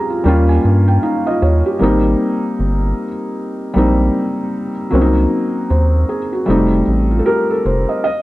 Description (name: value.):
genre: lo-fi hip hop.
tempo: 77 BPM.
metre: 4/4.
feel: swing 60% on 16ths.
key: unclear.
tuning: A4 = 440 Hz.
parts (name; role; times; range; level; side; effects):
felt-muted upright piano; accompaniment; 0.0-8.2 s; Gb3 to Bb5; -15 LUFS; equal; cassette tape, low-pass filter.
round analog bass; bass; 0.3-7.9 s; F1 to G2; -14 LUFS; equal; none.
room: moderate studio reverb, RT60 0.5 s.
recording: none.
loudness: -13 LUFS.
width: side -17 dB against mid.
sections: 0.0-8.0 A section.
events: felt piano fill 0.0-1.8.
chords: 0.3 Eb7; 1.8 Abmaj7 (rootless); 4.9 Cm7b5; 6.5 F7.